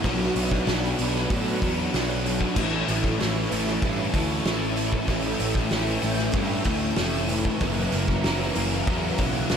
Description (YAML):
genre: rock, shoegaze and dream pop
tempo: 95 BPM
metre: 4/4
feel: straight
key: A mixolydian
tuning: A4 = 440 Hz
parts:
  - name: phased string machine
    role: sustained chords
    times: 0.0-9.6 s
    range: D4 to A5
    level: -33 LUFS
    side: equal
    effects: ensemble chorus, phaser
  - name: picked twelve-string acoustic guitar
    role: arpeggios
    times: 0.0-9.6 s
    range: E3 to A#3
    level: -34 LUFS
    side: right 1 dB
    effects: ensemble chorus, analog delay
  - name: overdriven semi-hollow guitar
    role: riff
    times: 0.0-9.6 s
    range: F#2 to E4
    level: -29 LUFS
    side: right 9 dB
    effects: reverse reverb
  - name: thick fuzz guitar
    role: riff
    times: 0.0-9.6 s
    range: F#2 to B3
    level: -28 LUFS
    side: left 10 dB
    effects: distortion, ensemble chorus
  - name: fuzz picked electric bass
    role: bass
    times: 0.0-9.6 s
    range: F1 to A2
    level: -29 LUFS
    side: equal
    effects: overdrive
  - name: loose indie drum kit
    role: drums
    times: 0.0-9.6 s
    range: crash cymbal, hi-hat, kick drum, snare drum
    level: -28 LUFS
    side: equal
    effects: none
room: light reverb, small room ambience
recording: none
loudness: -22 LUFS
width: side -7 dB against mid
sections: 0.0-9.6 A section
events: none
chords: 0.0 Bmadd9; 2.6 A; 7.6 F#7